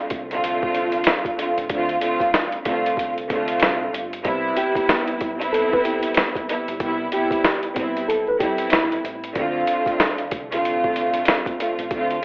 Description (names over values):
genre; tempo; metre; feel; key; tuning
hip hop, boom-bap hip-hop; 94 BPM; 4/4; swing 60% on 16ths; unclear; A4 = 437 Hz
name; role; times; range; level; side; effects
warm studio string section; accompaniment; 0.0-12.2 s; C3 to F4; -22 LUFS; equal; cassette tape, high-pass filter, low-pass filter
deep dub fingered electric bass; bass; 0.1-12.2 s; G1 to D2; -38 LUFS; equal; none
boom bap sampler-style drum kit; drums; 0.1-12.2 s; hi-hat, kick drum, snare drum; -23 LUFS; equal; cassette tape
nylon-string guitar; melody; 4.6-9.0 s; E4 to B4; -24 LUFS; equal; high-pass filter, low-pass filter, cassette tape, tape echo
room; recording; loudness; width
moderate small room ambience, RT60 0.5 s; home recording on cassette, vinyl crackle, telephone sound; -19 LUFS; side -31 dB against mid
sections
0.0-12.2 A section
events
none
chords
0.0 Dm7; 4.2 Cmaj7; 9.4 Dm7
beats
0.42 1.06 | 1.70 2.33 2.97 3.61 | 4.25 4.89 5.53 6.17 | 6.80 7.44 8.08 8.72 | 9.36 9.99 10.63 11.27 | 11.91